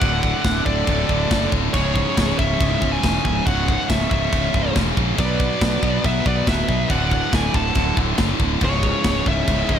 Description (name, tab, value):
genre	heavy metal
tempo	140 BPM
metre	4/4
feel	straight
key	C# phrygian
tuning	A4 = 440 Hz
part	high-gain lead guitar	melody	0.0-9.8 s	B4 to A5	-25 LUFS	equal	distortion
part	high-gain lead guitar	second line	0.0-9.8 s	G#4 to F#5	-31 LUFS	right 3 dB	distortion
part	lush unison pad	sustained chords	0.0-9.8 s	C#3 to D5	-34 LUFS	left 2 dB	none
part	heavy high-gain guitar	riff	0.0-9.8 s	C#2 to B3	-26 LUFS	left 17 dB	distortion
part	tight distorted guitar	riff	0.0-9.8 s	C#2 to B3	-27 LUFS	right 15 dB	distortion
part	tight distorted guitar	riff	0.0-9.8 s	C#2 to B3	-30 LUFS	equal	none
part	fuzz fingered electric bass	bass	0.0-9.8 s	C#1 to B1	-23 LUFS	equal	overdrive
part	tight metal drum kit	drums	0.0-9.8 s	crash cymbal, kick drum, snare drum	-22 LUFS	equal	none
room	little or no reverb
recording	none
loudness	-17 LUFS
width	side -9 dB against mid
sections	0.0-9.8 A section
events	none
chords	0.0 D; 1.7 C#m; 5.2 Bm; 6.9 D; 8.6 C#m